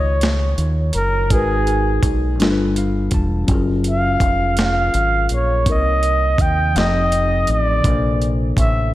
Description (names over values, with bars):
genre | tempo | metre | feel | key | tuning
slow six-eight R&B | 55 BPM (dotted quarters) | 6/8 | straight | unclear | A4 = 440 Hz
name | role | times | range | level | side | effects
breathy flugelhorn | melody | 0.0-8.9 s | G#4 to G5 | -20 LUFS | right 1 dB | tape echo
tine electric piano | accompaniment | 0.0-8.9 s | C3 to A5 | -23 LUFS | left 2 dB | phaser
deep dub fingered electric bass | bass | 0.0-8.9 s | E1 to D#2 | -19 LUFS | equal | none
dusty soul sampler-style drum kit | drums | 0.2-8.7 s | hi-hat, kick drum, snare drum | -20 LUFS | equal | overdrive
room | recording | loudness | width
moderate plate reverb, RT60 1.9 s | dreamy mix soaked in reverb | -15 LUFS | side -15 dB against mid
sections
0.0-8.9 A section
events
tine electric piano fill 2.4-3.5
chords
0.0 D#m7; 1.3 G#m9; 2.4 G9; 3.5 F#maj9; 5.7 Cm7; 6.8 F9; 7.8 A#maj9